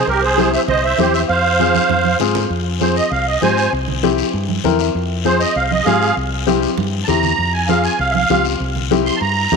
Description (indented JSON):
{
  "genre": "latin, cumbia",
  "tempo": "197 BPM",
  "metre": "4/4",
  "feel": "straight",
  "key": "F harmonic minor",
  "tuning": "A4 = 440 Hz",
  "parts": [
    { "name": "musette accordion", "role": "melody", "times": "0.0-9.6 s", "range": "G4 to C6", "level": "-17 LUFS", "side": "right 4 dB", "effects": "none" },
    { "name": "fingered electric bass", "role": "bass", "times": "0.1-9.6 s", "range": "C2 to Ab2", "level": "-21 LUFS", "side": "left 1 dB", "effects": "none" },
    { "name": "congas", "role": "percussion", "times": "0.1-9.6 s", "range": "none", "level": "-24 LUFS", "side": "right 11 dB", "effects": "none" },
    { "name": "guiro", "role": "percussion", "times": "0.1-9.6 s", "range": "none", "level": "-27 LUFS", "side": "left 13 dB", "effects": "none" },
    { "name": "dark upright piano", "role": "accompaniment", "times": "0.4-9.6 s", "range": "C4 to G5", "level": "-20 LUFS", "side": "left 9 dB", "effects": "none" }
  ],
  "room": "moderate echo chamber reverb, RT60 2.1 s",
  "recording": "1960s-style stereo with parts hard left and right",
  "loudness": "-14 LUFS",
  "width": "side -4 dB against mid",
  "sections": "0.0-2.5 A section; 2.5-9.6 B section",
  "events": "drum fill 1.7-2.5, 6.8-7.4; accordion solo 2.5-9.6; upright piano fill 4.5-4.9",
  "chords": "0.1 C; 1.3 Fm; 3.7 C7; 4.9 Fm; 6.2 C7; 7.4 Fm; 8.6 C7",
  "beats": "| 0.07 0.38 0.68 0.99 | 1.29 1.60 1.90 2.21 | 2.51 2.81 3.12 3.42 | 3.73 4.03 4.34 4.64 | 4.95 5.25 5.56 5.86 | 6.17 6.47 6.78 7.08 | 7.39 7.69 8.00 8.30 | 8.61 8.91 9.22 9.52"
}